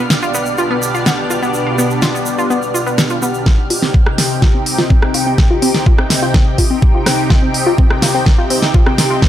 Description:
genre	progressive house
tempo	125 BPM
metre	4/4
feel	straight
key	C minor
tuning	A4 = 440 Hz
part	lush unison pad	sustained chords	0.0-9.3 s	B2 to G5	-17 LUFS	left 1 dB	chorus, phaser, sidechain pumping
part	analog pluck	arpeggios	0.0-9.3 s	B3 to F4	-19 LUFS	left 1 dB	chorus, sidechain pumping, tape echo
part	twinkling granular texture	texture	0.0-3.5 s	F6	-29 LUFS	right 3 dB	built-in reverb, sidechain pumping
part	pop drum kit	drums	0.1-9.3 s	hi-hat, rim click, snare drum	-17 LUFS	equal	none
part	tube shaker	percussion	0.1-3.4 s	none	-26 LUFS	right 3 dB	none
part	electronic kick drum	drums	3.5-9.3 s	none	-11 LUFS	equal	none
room	light reverb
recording	none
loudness	-11 LUFS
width	side -11 dB against mid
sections	0.0-3.5 A section; 3.5-9.3 B section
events	build-up 3.5-9.3; drum fill 3.5-9.3; filter sweep on synth arpeggio sound 3.5-9.3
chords	0.0 G/B; 3.5 Cm

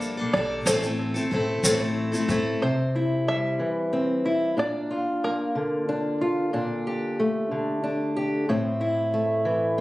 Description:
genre	indie folk with a building arrangement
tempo	61 BPM (dotted quarters)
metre	6/8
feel	straight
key	C mixolydian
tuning	A4 = 441 Hz
part	open-back banjo	melody	0.0-6.2 s	Bb4 to E5	-30 LUFS	right 1 dB	analog delay
part	picked steel-string acoustic guitar	accompaniment	0.0-2.6 s	A2 to A4	-24 LUFS	left 1 dB	none
part	upright bass	bass	0.0-2.5 s	A1 to A2	-30 LUFS	equal	none
part	egg shaker	percussion	0.0-2.4 s	none	-29 LUFS	equal	none
part	fingerpicked old ladder-braced acoustic guitar	accompaniment	2.6-9.8 s	A2 to G4	-23 LUFS	equal	none
room	light reverb, studio ambience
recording	recorded on a phone in the room, studio reverb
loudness	-23 LUFS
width	side -17 dB against mid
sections	0.0-2.6 A section; 2.6-9.8 B section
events	none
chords	0.0 Gmadd9/Bb; 0.7 Am; 2.6 C; 4.6 Bb; 6.5 Gmadd9/Bb; 8.5 Am

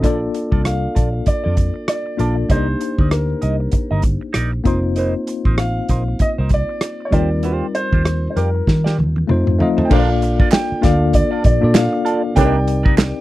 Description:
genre	lush 1970s-style soul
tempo	97 BPM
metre	4/4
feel	swing 58% on 16ths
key	Bb major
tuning	A4 = 445 Hz
part	tine electric piano	accompaniment	0.0-13.2 s	G3 to Eb5	-21 LUFS	left 3 dB	medium stereo tremolo
part	clean electric guitar	riff	0.0-13.0 s	Eb4 to Eb5	-25 LUFS	right 5 dB	wah
part	vintage muted fingered electric bass	bass	0.0-13.1 s	F1 to F3	-19 LUFS	equal	none
part	warm soul drum kit	drums	0.0-13.1 s	crash cymbal, hi-hat, kick drum, rim click, snare drum, toms	-17 LUFS	equal	none
part	warm concert grand piano	melody	0.7-13.2 s	Bb4 to G5	-24 LUFS	equal	none
part	brilliant trombone section	stabs	9.9-12.6 s	D3 to D4	-26 LUFS	right 10 dB	tape echo
part	group handclap	percussion	10.5-13.1 s	none	-26 LUFS	right 9 dB	none
room	little or no reverb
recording	dry, close 1970s-style studio recording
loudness	-15 LUFS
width	side -16 dB against mid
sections	0.0-9.9 A section; 9.9-13.2 B section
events	drum fill 8.7-9.9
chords	0.0 Bbmaj7; 2.5 Cm9; 4.7 F7sus4; 7.1 Eb69; 9.3 F7; 9.9 Bbmaj7; 12.4 Cm9

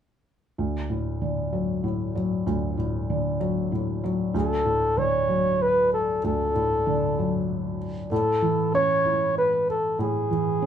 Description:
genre	pop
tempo	64 BPM (dotted quarters)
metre	6/8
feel	straight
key	unclear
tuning	A4 = 439 Hz
part	felt-muted upright piano	accompaniment	0.6-10.7 s	D2 to E4	-25 LUFS	equal	none
part	mellow flugelhorn	melody	4.4-10.7 s	G#4 to C#5	-22 LUFS	equal	none
room	wet studio ambience, RT60 0.4 s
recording	band playing live in one room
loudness	-22 LUFS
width	side -9 dB against mid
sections	0.6-4.3 A section; 4.3-10.7 B section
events	none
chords	0.6 D; 8.1 Amaj7

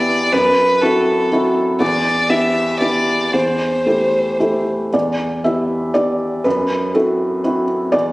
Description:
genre	neoclassical piano and strings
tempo	112-124 BPM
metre	3/4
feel	rubato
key	E minor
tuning	A4 = 440 Hz
part	rich violin	melody	0.0-4.7 s	A4 to E5	-16 LUFS	equal	none
part	felt-muted upright piano	accompaniment	0.0-8.1 s	E2 to E5	-16 LUFS	equal	none
room	moderate scoring stage reverb, RT60 1.6 s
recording	recorded on a phone in the room, studio reverb, compression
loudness	-14 LUFS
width	side -20 dB against mid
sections	0.0-4.9 A section; 4.9-8.1 A section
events	none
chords	0.3 F#m7b5; 1.8 Em7; 3.3 C6/E; 4.9 Em7; 6.5 F#m7b5

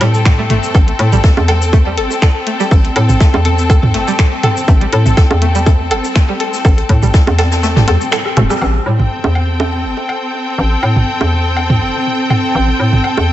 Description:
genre	minimal techno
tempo	122 BPM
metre	4/4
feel	swing 54% on 16ths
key	A minor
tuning	A4 = 440 Hz
part	string-like resonator pluck	riff	0.0-8.5 s	G3 to A4	-20 LUFS	right 1 dB	chorus, sidechain pumping, tape echo
part	hollow knocking FM bass	bass	0.0-13.3 s	E1 to A2	-14 LUFS	equal	sidechain pumping
part	jazz brush drum kit	drums	0.0-8.5 s	hi-hat, snare drum	-27 LUFS	left 2 dB	none
part	minimal click drum kit	drums	0.0-8.6 s	finger snaps, hi-hat, rim click, shaker	-22 LUFS	equal	overdrive
part	clear studio string section	texture	0.0-13.3 s	C4 to G5	-18 LUFS	left 1 dB	sidechain pumping
part	electronic kick drum	drums	0.3-7.2 s	none	-9 LUFS	equal	overdrive
part	electronic woodblock, toms and bongos	percussion	0.3-13.3 s	none	-18 LUFS	right 2 dB	overdrive, tape echo
room	moderate lush hall reverb, RT60 1.5 s, digital ambience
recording	dreamy mix soaked in reverb, nothing above 8.0 kHz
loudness	-10 LUFS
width	side -13 dB against mid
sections	0.0-8.6 A section; 8.6-13.3 B section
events	kick drops out 7.6-8.6; drum fill 8.2-8.6; band accent 8.5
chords	0.0 Am7

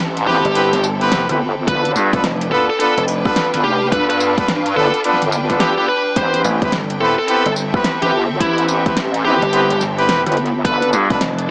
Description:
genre	glitch hop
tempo	107 BPM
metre	4/4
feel	swing 62% on 16ths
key	A minor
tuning	A4 = 440 Hz
part	wobble bass	bass	0.0-10.9 s	F1 to G2	-20 LUFS	equal	chorus
part	bright studio string section	texture	0.0-11.5 s	C4 to G5	-24 LUFS	equal	sidechain pumping
part	pop drum kit	drums	0.2-11.5 s	hi-hat, rim click, snare drum, tambourine	-22 LUFS	equal	overdrive
part	high-gain lead guitar	melody	0.3-10.9 s	E4 to C5	-20 LUFS	equal	distortion, digital delay
part	brilliant horn section	stabs	0.3-11.2 s	B3 to B4	-18 LUFS	equal	sidechain pumping, digital delay
part	gritty slap bass	bass	0.4-11.5 s	F1 to G2	-19 LUFS	equal	overdrive
part	electronic kick drum	drums	1.7-11.2 s	none	-19 LUFS	equal	overdrive
room	light reverb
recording	vinyl crackle, small speaker sound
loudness	-13 LUFS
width	side -37 dB against mid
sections	0.0-11.5 A section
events	none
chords	0.0 Am7; 1.7 G7; 6.2 Am7; 10.6 G7

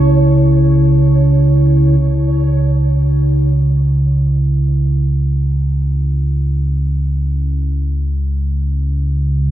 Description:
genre	ambient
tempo	free time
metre	none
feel	none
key	C# minor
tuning	A4 = 441 Hz
part	bronze singing bowl	arpeggios	0.0-2.3 s	E4	-23 LUFS	left 3 dB	ping-pong delay
part	deep rumbling drone	drone	0.0-9.5 s	C#2 to C#3	-12 LUFS	right 1 dB	built-in reverb, lush chorus
part	bubbling stepped-filter texture	texture	0.0-2.0 s	C#5	-26 LUFS	right 3 dB	chorus, built-in reverb
room	wet cathedral reverb, RT60 5.3 s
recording	nothing above 7.4 kHz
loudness	-12 LUFS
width	side -12 dB against mid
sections	0.0-2.0 A section; 2.0-9.5 B section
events	filter sweep on synth drone 0.0-2.0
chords	0.0 C#m; 2.0 N.C.

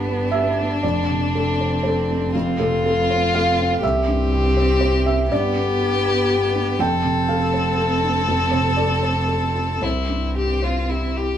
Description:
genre	neoclassical piano and strings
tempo	121 BPM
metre	3/4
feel	rubato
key	C major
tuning	A4 = 440 Hz
part	clear violin	melody	0.0-11.4 s	D4 to A4	-22 LUFS	left 3 dB	none
part	rich cello	second line	0.0-11.2 s	B3 to C4	-28 LUFS	right 5 dB	none
part	felt-muted upright piano	accompaniment	0.0-11.4 s	C2 to G5	-22 LUFS	right 1 dB	none
part	rich double bass	bass	0.0-11.4 s	F1 to C2	-24 LUFS	equal	none
room	wet studio reverb, RT60 0.5 s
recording	band playing live in one room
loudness	-17 LUFS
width	side -10 dB against mid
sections	0.0-11.4 A section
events	none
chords	0.0 G; 0.8 Dm7/F; 2.3 F; 3.8 C; 5.3 G; 6.8 Dm7/F; 8.3 F; 9.8 C

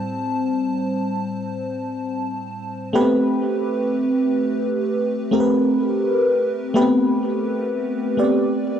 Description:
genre	R&B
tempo	63 BPM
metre	4/4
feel	swing 54% on 16ths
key	A minor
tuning	A4 = 440 Hz
part	FM electric piano with soft pad layer	solo	0.0-8.8 s	A2 to A5	-19 LUFS	equal	chorus, phaser, cassette tape, analog delay
room	moderate studio ambience, RT60 0.5 s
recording	home recording on cassette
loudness	-18 LUFS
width	side -9 dB against mid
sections	0.0-2.9 A section; 2.9-8.8 B section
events	FM electric piano solo 0.0-2.9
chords	0.0 Am7; 2.9 Am9

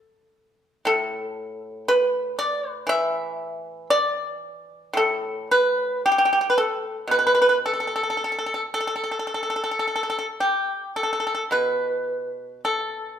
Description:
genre	chinese traditional, Chinese solo plucked strings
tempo	52-60 BPM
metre	4/4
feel	rubato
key	A shang mode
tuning	A4 = 440 Hz
part	pipa	solo	0.0-13.2 s	A2 to E5	-21 LUFS	equal	none
room	wet large studio reverb, RT60 1.4 s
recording	band playing live in one room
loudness	-21 LUFS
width	side -9 dB against mid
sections	0.0-13.2 A section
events	none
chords	none

